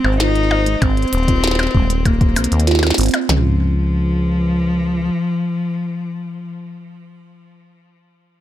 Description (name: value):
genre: IDM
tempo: 97 BPM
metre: 4/4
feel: straight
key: Db major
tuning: A4 = 437 Hz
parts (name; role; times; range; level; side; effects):
- warm cello; melody; 0.0-6.5 s; F3 to Eb4; -20 LUFS; left 2 dB; ping-pong delay
- harp-like synth pluck; arpeggios; 0.0-3.6 s; Ab3 to C5; -23 LUFS; right 7 dB; chorus, tape echo
- deep acid bass; bass; 0.0-5.1 s; Eb1 to Eb2; -18 LUFS; left 1 dB; none
- glitchy drum kit; drums; 0.0-3.3 s; cabasa, hi-hat, percussion blips, snare drum; -21 LUFS; left 1 dB; overdrive, digital delay
- glitchy drum kit; drums; 0.8-3.4 s; kick drum, snare drum, toms; -17 LUFS; equal; overdrive
room: digital ambience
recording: none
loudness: -14 LUFS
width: side -12 dB against mid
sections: 0.0-3.3 A section; 3.3-5.8 B section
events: none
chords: 0.0 Abadd9; 3.3 Db